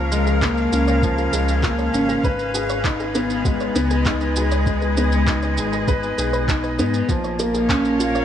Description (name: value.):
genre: piano and strings electronica.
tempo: 99 BPM.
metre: 4/4.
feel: straight.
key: G# dorian.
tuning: A4 = 440 Hz.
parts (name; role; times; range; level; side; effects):
rich string quartet; sustained chords; 0.0-8.2 s; C#3 to E#5; -26 LUFS; left 1 dB; sidechain pumping.
soft round pluck; arpeggios; 0.0-8.2 s; E#4 to G#5; -32 LUFS; right 1 dB; chorus, sidechain pumping, tape echo.
warm upright piano; riff; 0.0-8.2 s; E#3 to B4; -21 LUFS; left 1 dB; tape echo.
round analog bass; bass; 0.0-8.2 s; G#1 to G#2; -24 LUFS; equal; sidechain pumping.
electronic shaker and handclaps; drums; 0.1-8.2 s; none; -28 LUFS; right 1 dB; none.
electronic kick drum; drums; 0.4-7.8 s; none; -23 LUFS; equal; none.
room: light reverb.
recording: none.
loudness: -17 LUFS.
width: side -10 dB against mid.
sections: 0.0-8.2 A section.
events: none.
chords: 0.0 C#6; 2.2 G#m; 7.1 A#m.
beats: 0.42 1.03 1.63 | 2.24 2.85 3.45 4.06 | 4.66 5.27 5.88 6.48 | 7.09 7.69.